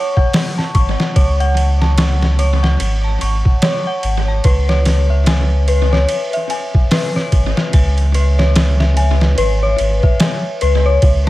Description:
trip hop; 73 BPM; 4/4; swing 59% on 16ths; C# minor; A4 = 441 Hz
dark detuned synth bell; arpeggios; 0.0-11.3 s; B4 to C#6; -19 LUFS; left 2 dB; chorus, phaser, low-pass filter, dub echo
trip hop sampler-style drum kit; drums; 0.2-11.3 s; hi-hat, kick drum, ride cymbal, snare drum; -16 LUFS; equal; small room ambience, tape echo
warm sub bass; bass; 0.7-11.3 s; G#1 to C#2; -14 LUFS; equal
little or no reverb; echo-heavy mix; -12 LUFS; side -17 dB against mid
0.0-11.3 A section
0.0 F#m; 4.4 C#m7

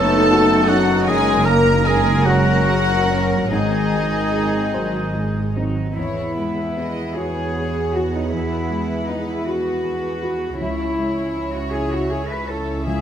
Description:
cinematic, emotional film score for orchestra; 48-54 BPM (dotted quarters); 6/8; rubato; A4 = 440 Hz
warm symphonic violin section; melody; 0.0-13.0 s; D#5 to A#5; -30 LUFS; left 2 dB
flute section; second line; 0.0-5.5 s; D#5 to A#5; -26 LUFS; left 1 dB
warm oboe; second line; 0.0-5.5 s; D#4 to A#4; -25 LUFS; right 2 dB
warm symphonic violin section; second line; 0.0-13.0 s; D#4 to E5; -29 LUFS; equal
dark symphonic viola section; accompaniment; 0.0-13.0 s; F#3 to G#4; -25 LUFS; equal
warm grand piano; accompaniment; 0.0-13.0 s; C#2 to C#5; -26 LUFS; left 2 dB
warm French horn section; sustained chords; 0.0-5.6 s; D#3 to A#3; -24 LUFS; left 3 dB
warm symphonic cello section; bass; 0.0-13.0 s; D#4 to B4; -24 LUFS; equal
warm symphonic double bass section; bass; 0.0-13.0 s; F#1 to E2; -24 LUFS; right 3 dB
moderate scoring stage reverb, RT60 2.0 s; -17 LUFS; side -9 dB against mid
0.0-6.0 A section; 6.0-13.0 B section
0.0 F#m; 1.1 F#add9; 3.5 G#; 6.0 Eadd9; 10.6 C#m

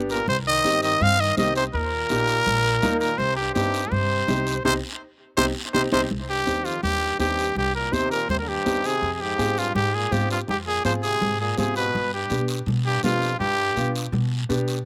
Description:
latin, cumbia; 165 BPM; 4/4; straight; C minor, C harmonic minor from 6.1 s; A4 = 440 Hz
warm upright piano; accompaniment; 0.0-14.8 s; Bb3 to Bb4; -30 LUFS; equal
upright bass; bass; 0.0-14.8 s; G1 to B2; -31 LUFS; equal
growling trumpet; melody; 0.1-13.9 s; F4 to F5; -25 LUFS; equal; slapback echo
bright trombone; second line; 0.1-13.9 s; F2 to C4; -35 LUFS; equal; slapback echo
guiro; percussion; 0.1-14.9 s; -38 LUFS; equal
congas; percussion; 0.3-14.7 s; -33 LUFS; equal
little or no reverb; recorded outdoors, with no room sound; -23 LUFS; mono
0.0-6.1 A section; 6.1-14.9 B section
band accent 4.7-6.1
0.3 Cm; 1.7 Eb; 3.2 Cm; 9.0 Fm; 11.9 G7

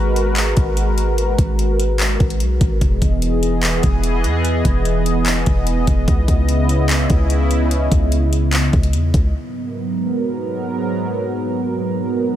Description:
hip hop, atmospheric cloud-rap; 147 BPM; 4/4; half-time; G# minor; A4 = 442 Hz
sweeping resonant pad; sustained chords; 0.0-12.4 s; G#2 to D#5; -20 LUFS; right 1 dB; chorus, sidechain pumping
warm 808-style bass; bass; 0.0-9.3 s; E1 to E2; -18 LUFS; equal
smooth R&B drum kit; drums; 0.2-9.2 s; handclaps, hi-hat, kick drum; -19 LUFS; equal
digital ambience; -15 LUFS; side -12 dB against mid
0.0-9.3 A section; 9.3-12.4 B section
0.0 G#m9; 2.8 Emaj7; 6.1 C#m9; 9.3 G#m9

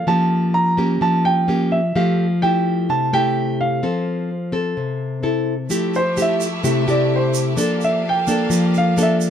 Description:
bossa nova; 128 BPM; 4/4; straight; F major; A4 = 440 Hz
warm grand piano; melody; 0.0-9.2 s; C5 to Bb5; -20 LUFS; right 2 dB
nylon-string guitar; accompaniment; 0.0-9.3 s; C3 to A4; -18 LUFS; left 1 dB
warm studio violin section; sustained chords; 5.7-9.3 s; A3 to F5; -28 LUFS; equal
tube shaker; percussion; 5.7-9.3 s; -29 LUFS; right 9 dB
moderate spring reverb, RT60 1.3 s; dark, warm production; -16 LUFS; side -9 dB against mid
0.0-5.7 A section; 5.7-9.3 B section
grand piano solo 5.7-9.3
0.1 A7b9/F; 2.0 Fmaj9; 3.8 Fmaj7; 5.7 Fmaj9; 7.6 Gm9/F

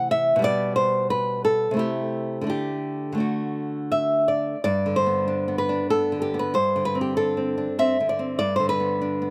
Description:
romantic piece for solo classical guitar; 82-100 BPM; 3/4; rubato; G major; A4 = 440 Hz
nylon-string guitar; solo; 0.0-9.3 s; G2 to F#5; -24 LUFS; equal; slapback echo
light reverb; recorded outdoors, with no room sound; -24 LUFS; mono
0.0-4.6 A section; 4.6-9.3 B section
0.4 G/B; 1.8 Am7/C; 2.5 D; 4.6 G; 6.5 D5/G; 8.4 G

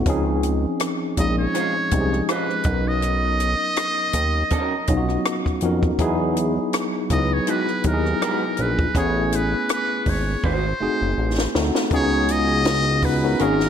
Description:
R&B, neo-soul; 81 BPM; 4/4; swing 55% on 16ths; A4 = 439 Hz
tine electric piano; accompaniment; 0.0-13.7 s; F3 to B4; -23 LUFS; left 2 dB; overdrive, fast stereo tremolo
fat analog bass; bass; 0.0-13.7 s; Gb1 to F2; -23 LUFS; equal
compact cocktail drum kit; drums; 0.1-13.7 s; hi-hat, kick drum, rim click, snare drum; -25 LUFS; equal
trumpet with metal mute; melody; 1.2-13.7 s; Bb4 to Eb5; -24 LUFS; right 1 dB
electric guitar through a small old amp; second line; 1.5-13.6 s; Gb3 to C5; -28 LUFS; right 6 dB; analog chorus
moderate lush hall reverb, RT60 1.7 s, small room ambience; dreamy mix soaked in reverb; -19 LUFS; side -8 dB against mid
0.0-11.9 A section; 11.9-13.7 B section
drum fill 10.4-11.9
0.1 Dbmaj9; 2.7 Cbmaj9; 6.0 Emaj9; 8.9 Amaj9; 10.4 Ab7b9; 11.9 Db9sus4

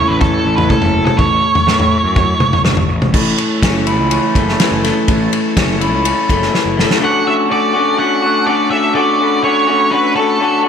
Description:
indie rock; 124 BPM; 4/4; straight; D major; A4 = 440 Hz
octave-fuzz lead guitar; melody; 0.0-2.6, 7.0-10.6 s; A4 to F#5; -15 LUFS; right 2 dB; distortion, slapback echo
crunchy overdriven guitar; riff; 0.0-7.0 s; E3 to A4; -23 LUFS; right 9 dB; wide subtle chorus, slapback echo
electric guitar through a small old amp; riff; 0.0-10.7 s; A2 to F#4; -16 LUFS; left 3 dB; slapback echo
fuzz picked electric bass; bass; 0.1-6.8 s; F#1 to A2; -20 LUFS; equal; overdrive
loose indie drum kit; drums; 0.2-7.0 s; crash cymbal, kick drum, ride cymbal, snare drum, toms; -16 LUFS; equal
phased analog pad; sustained chords; 3.1-10.7 s; E4 to B5; -25 LUFS; right 2 dB; phaser, chorus
moderate lush hall reverb, RT60 1.9 s, small room ambience; big arena sound; -11 LUFS; side -7 dB against mid
0.0-3.1 A section; 3.1-7.0 B section; 7.0-10.7 C section
drum fill 6.5-7.0
0.0 A; 7.0 Dmaj7

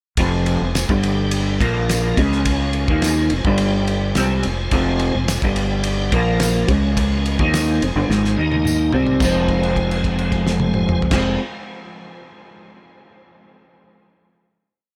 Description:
psychedelic rock; 107 BPM; 4/4; straight; F minor; A4 = 441 Hz
tonewheel organ; sustained chords; 0.2-11.4 s; F3 to Bb5; -31 LUFS; equal; overdrive, chorus vibrato, slow rotary speaker
electric guitar through a small old amp; riff; 0.2-11.4 s; F2 to Eb4; -22 LUFS; equal; rotary speaker
fingered electric bass; bass; 0.2-11.4 s; F1 to Eb2; -25 LUFS; equal
cloth-damped thuddy drum kit; drums; 0.2-11.3 s; crash cymbal, kick drum, ride cymbal, snare drum, toms; -26 LUFS; equal
tambourine; percussion; 0.8-9.5 s; -35 LUFS; equal
light reverb, small room ambience; -18 LUFS; mono
0.2-9.2 riff; 9.2-11.5 final chord
drum fill 8.1-9.2; held note 9.2-11.1
0.2 Fm; 0.9 G5; 1.6 Bb5; 2.2 Db5; 2.9 Fm; 3.5 G5; 4.2 Fm; 5.4 G5; 6.1 Bb5; 6.7 Db5; 7.4 Fm; 8.4 Eb5; 8.9 Fm

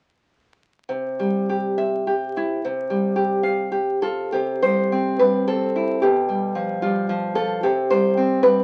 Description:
romantic piece for solo classical guitar; 93-117 BPM; 3/4; rubato; C major; A4 = 441 Hz
nylon-string guitar; solo; 0.9-8.6 s; B2 to F5; -21 LUFS; equal
moderate club reverb, RT60 0.5 s; very old 78 rpm record, vinyl crackle; -22 LUFS; mono
0.9-4.3 A section; 4.3-8.6 B section
0.9 C; 2.6 Csus4; 4.3 C; 6.0 G7/B; 7.6 C5

